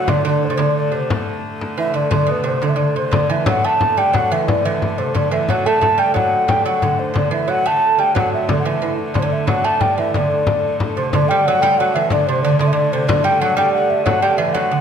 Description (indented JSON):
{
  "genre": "medieval dance",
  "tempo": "120 BPM (dotted quarters)",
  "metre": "6/8",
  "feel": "straight",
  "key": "D mixolydian",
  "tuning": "A4 = 439 Hz",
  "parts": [
    { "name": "mellow alto ocarina", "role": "melody", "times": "0.0-14.8 s", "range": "B4 to A5", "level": "-18 LUFS", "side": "left 1 dB", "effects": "none" },
    { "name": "lute", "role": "second line", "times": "0.0-14.8 s", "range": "B2 to A3", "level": "-19 LUFS", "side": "right 5 dB", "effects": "none" },
    { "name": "rich hurdy-gurdy", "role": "drone", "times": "0.0-14.8 s", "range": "D3 to A3", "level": "-26 LUFS", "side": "left 1 dB", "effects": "none" },
    { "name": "frame drum", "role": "percussion", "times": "0.1-14.7 s", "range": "none", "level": "-23 LUFS", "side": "left 4 dB", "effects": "none" }
  ],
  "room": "wet recital hall reverb, RT60 1.4 s",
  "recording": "none",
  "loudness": "-15 LUFS",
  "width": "side -7 dB against mid",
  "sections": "0.0-3.1 A section; 3.1-11.1 B section; 11.1-14.8 C section",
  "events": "speeding up 0.0-14.8",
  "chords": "none"
}